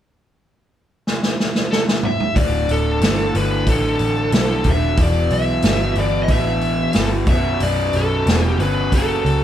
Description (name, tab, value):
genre	blues rock power trio and southern rock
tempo	91 BPM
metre	4/4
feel	straight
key	unclear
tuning	A4 = 444 Hz
part	vintage drum kit	drums	1.1-9.4 s	hi-hat, kick drum, snare drum, toms	-20 LUFS	equal	none
part	bluesy overdriven lead guitar	melody	1.7-9.4 s	A4 to E5	-22 LUFS	left 1 dB	distortion
part	raw garage guitar	riff	2.4-9.4 s	B1 to F#3	-22 LUFS	equal	overdrive
part	vintage muted picked electric bass	bass	2.4-9.4 s	B0 to C#2	-20 LUFS	equal	none
room	moderate stone room reverb, RT60 1.2 s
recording	band playing live in one room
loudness	-16 LUFS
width	side -11 dB against mid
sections	0.0-2.4 A section; 2.4-9.4 B section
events	drum fill 1.0-2.4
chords	0.0 N.C.; 2.4 D5; 5.0 Em; 7.3 B5; 8.9 F#m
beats	0.39 1.04 1.70 | 2.35 3.01 3.67 4.32 | 4.98 5.63 6.29 6.95 | 7.61 8.27 8.93